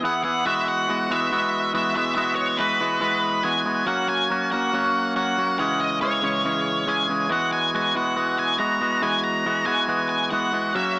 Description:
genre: rock.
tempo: 140 BPM.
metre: 4/4.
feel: straight.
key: E lydian.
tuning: A4 = 442 Hz.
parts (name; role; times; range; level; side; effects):
octave-fuzz lead guitar; melody; 0.0-11.0 s; B4 to A#5; -27 LUFS; equal; distortion.
twangy electric guitar; riff; 0.0-11.0 s; C#3 to G#4; -25 LUFS; equal; none.
room: moderate spring reverb, RT60 1.6 s.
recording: worn, warbling old tape, cassette tape, warbly pitch drift, small speaker sound.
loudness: -23 LUFS.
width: mono.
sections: 0.5-11.0 A section.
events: none.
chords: 0.5 Eadd9; 3.9 F#; 5.6 C#m; 7.3 Eadd9.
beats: 0.04 | 0.46 0.89 1.32 1.75 | 2.17 2.60 3.03 3.46 | 3.88 4.31 4.74 5.17 | 5.60 6.03 6.46 6.88 | 7.31 7.74 8.17 8.61 | 9.04 9.47 9.90 10.33 | 10.76.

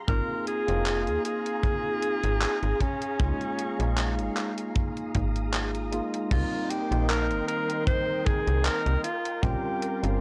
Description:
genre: vaporwave.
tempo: 77 BPM.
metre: 4/4.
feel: swing 54% on 16ths.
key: unclear.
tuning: A4 = 438 Hz.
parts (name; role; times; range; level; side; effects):
soft string machine; sustained chords; 0.0-10.2 s; Ab4 to Eb6; -40 LUFS; equal; ensemble chorus.
clear alto saxophone; melody; 0.1-10.2 s; Db4 to C5; -32 LUFS; equal; analog delay.
barky tine electric piano; accompaniment; 0.1-10.2 s; Eb3 to F4; -35 LUFS; equal; overdrive, lush chorus.
slap-like FM bass; bass; 0.1-10.2 s; F1 to Eb2; -30 LUFS; equal; tube saturation.
gated 80s digital drum machine; drums; 0.1-10.2 s; crash cymbal, handclaps, hi-hat; -35 LUFS; equal; gated reverb, overdrive, vintage 12-bit sampler grit.
kick drum; drums; 0.1-9.6 s; none; -30 LUFS; equal; vintage 12-bit sampler grit.
room: small room reverb.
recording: dry, gritty hardware recording, transformer saturation, cassette tape.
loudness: -27 LUFS.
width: mono.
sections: 0.0-6.3 A section; 6.3-10.2 B section.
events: none.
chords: 0.0 Ab69; 2.8 Db6; 6.3 Cm7; 9.0 Bbm69.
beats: | 0.08 0.86 1.64 2.42 | 3.20 3.98 4.76 5.54 | 6.32 7.09 7.87 8.65 | 9.43.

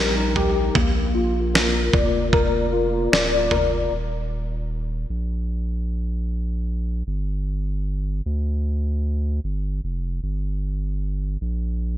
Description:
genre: pop ballad.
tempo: 76 BPM.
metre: 4/4.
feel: straight.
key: Eb major.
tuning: A4 = 440 Hz.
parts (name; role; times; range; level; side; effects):
tine electric piano; accompaniment; 0.0-3.9 s; G3 to D5; -22 LUFS; left 2 dB; ensemble chorus.
saturated sub bass; bass; 0.0-12.0 s; D1 to D2; -24 LUFS; equal; none.
dusty soul sampler-style drum kit; drums; 0.4-3.7 s; kick drum, snare drum, toms; -21 LUFS; right 1 dB; gated reverb.
room: moderate lush hall reverb, RT60 2.9 s.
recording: bright 1980s-style digital production.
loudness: -21 LUFS.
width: side -12 dB against mid.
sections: 0.0-3.9 A section; 3.9-12.0 B section.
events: none.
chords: 0.0 Eb; 0.8 Bb; 3.9 Eb5; 7.1 G5; 10.2 Gm.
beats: | 0.76 1.54 2.33 3.12 | 3.91 4.70 5.49 6.28 | 7.07 7.86 8.65 9.44 | 10.23 11.02 11.81.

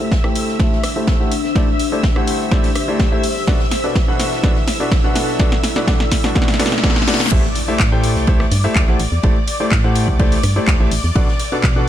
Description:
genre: piano house.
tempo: 125 BPM.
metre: 4/4.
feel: straight.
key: unclear.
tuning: A4 = 440 Hz.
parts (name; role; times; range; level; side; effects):
analog string pad; sustained chords; 0.0-11.9 s; D5 to E6; -27 LUFS; left 2 dB; ensemble chorus, sidechain pumping.
clear baby grand piano; riff; 0.0-11.9 s; B2 to G5; -21 LUFS; left 1 dB; sidechain pumping, low-pass filter, digital delay.
riser, reverse cymbal and impact; sound effects; 2.9-9.2 s; none; -27 LUFS; equal; none.
deep dark ambient pad; texture; 0.0-7.3 s; D4 to D5; -26 LUFS; left 2 dB; chorus, built-in reverb, sidechain pumping.
organ-like FM bass; bass; 0.1-11.9 s; A1 to C3; -20 LUFS; equal; sidechain pumping, high-pass filter.
electronic kick drum; drums; 0.1-11.7 s; none; -16 LUFS; equal; studio reverb.
house drum kit; drums; 0.1-11.7 s; crash cymbal, handclaps, hi-hat, rim click, snare drum; -22 LUFS; equal; studio reverb.
open jazz drum kit; drums; 0.1-11.8 s; hi-hat, ride cymbal, snare drum; -31 LUFS; right 2 dB; high-pass filter on cymbals, studio reverb, high-pass filter on hats, high-pass filter on snare, high-pass filter on room.
room: little or no reverb.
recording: none.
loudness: -14 LUFS.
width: side -11 dB against mid.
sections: 0.0-7.3 A section; 7.3-11.9 B section.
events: build-up 0.0-7.3; drum fill 0.0-7.3; filter sweep on grand piano 0.0-7.3; riser 2.9-7.3; reverse cymbal 6.4-7.3; drop 7.3-11.9; impact 7.3-9.2.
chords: 0.0 D9sus4; 3.5 Bm7; 5.4 Cmaj7; 7.3 D9sus4/A; 11.2 Bm7.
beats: 0.12 0.60 1.08 | 1.56 2.04 2.52 3.00 | 3.48 3.96 4.44 4.92 | 5.40 5.88 6.36 6.84 | 7.32 7.80 8.28 8.76 | 9.24 9.72 10.20 10.68 | 11.16 11.64.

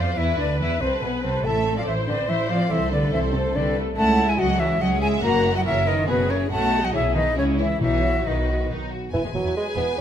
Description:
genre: classical, dramatic, fast romantic movement for symphony orchestra.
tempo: 142 BPM.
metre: 3/4.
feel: straight.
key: A minor, E major from 4.0 s.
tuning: A4 = 442 Hz.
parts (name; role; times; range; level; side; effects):
rich symphonic violin section; melody; 0.0-10.0 s; A3 to G#5; -32 LUFS; left 2 dB; none.
dark symphonic violin section; second line; 0.0-10.0 s; G#3 to F#5; -31 LUFS; equal; none.
silver concert flute; second line; 0.0-8.7 s; B4 to A#5; -25 LUFS; left 1 dB; none.
rich symphonic viola section; accompaniment; 0.0-10.0 s; E4 to C5; -31 LUFS; equal; none.
mellow French horn section; sustained chords; 0.0-8.7 s; B3 to A#4; -29 LUFS; left 4 dB; none.
rich symphonic double bass section; bass; 0.0-10.0 s; E1 to F2; -26 LUFS; right 1 dB; none.
warm symphonic cello section; bass; 0.0-10.0 s; E2 to A#3; -27 LUFS; right 1 dB; none.
timpani; percussion; 7.8-8.4 s; B2; -30 LUFS; left 3 dB; none.
mellow bassoon; accompaniment; 9.1-10.0 s; E3 to B3; -24 LUFS; right 3 dB; none.
room: moderate recital hall reverb, RT60 1.6 s.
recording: none.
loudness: -20 LUFS.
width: side -9 dB against mid.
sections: 0.0-9.1 A section.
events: none.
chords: 0.2 E5; 1.4 Am; 2.7 Am/C; 4.0 C#m; 5.2 F#7; 6.5 B13; 7.4 C#m; 7.8 B; 9.1 E.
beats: | 0.17 0.59 1.01 | 1.44 1.86 2.28 | 2.71 3.12 3.55 | 3.97 4.39 4.81 | 5.23 5.66 6.08 | 6.50 6.93 7.37 | 7.81 8.26 8.70 | 9.13 9.56 9.98.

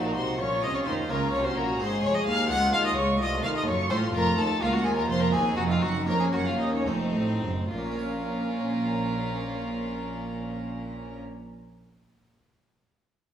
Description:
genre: classical, baroque-style concerto movement with solo episodes.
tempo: 68-86 BPM (dotted quarters).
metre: 6/8.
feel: straight.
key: Bb minor.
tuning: A4 = 440 Hz.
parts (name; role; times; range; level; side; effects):
rich chamber violin section; melody; 0.0-11.2 s; Bb4 to Gb6; -33 LUFS; left 1 dB; none.
warm violin; melody; 0.0-11.2 s; C4 to Gb5; -30 LUFS; left 1 dB; none.
rich chamber violin section; second line; 0.0-11.2 s; Db4 to Ab4; -34 LUFS; left 3 dB; none.
dark chamber viola section; accompaniment; 0.0-11.2 s; Ab3 to Eb4; -33 LUFS; right 2 dB; none.
harpsichord; accompaniment; 0.0-11.5 s; C2 to Db5; -36 LUFS; equal; none.
dark studio double bass section; bass; 0.0-11.2 s; F1 to Eb2; -34 LUFS; right 2 dB; none.
warm chamber cello section; bass; 0.0-11.2 s; C2 to Eb3; -31 LUFS; right 2 dB; none.
room: wet recital hall reverb, RT60 1.5 s.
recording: small room reverb.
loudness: -24 LUFS.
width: side -9 dB against mid.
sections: 0.0-7.7 A section; 7.7-11.2 B section.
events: slowing down 3.9-7.7.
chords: 0.4 Bbm; 1.8 Ab; 2.5 Db; 3.2 F7; 4.6 Bbm/Db; 5.3 Cdim; 6.1 Bbm/F; 6.9 F7; 7.7 Bbm.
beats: | 0.39 1.09 | 1.79 2.49 | 3.19 3.89 | 4.60 5.32 | 6.07 6.87 | 7.71 8.59 | 9.47 10.35.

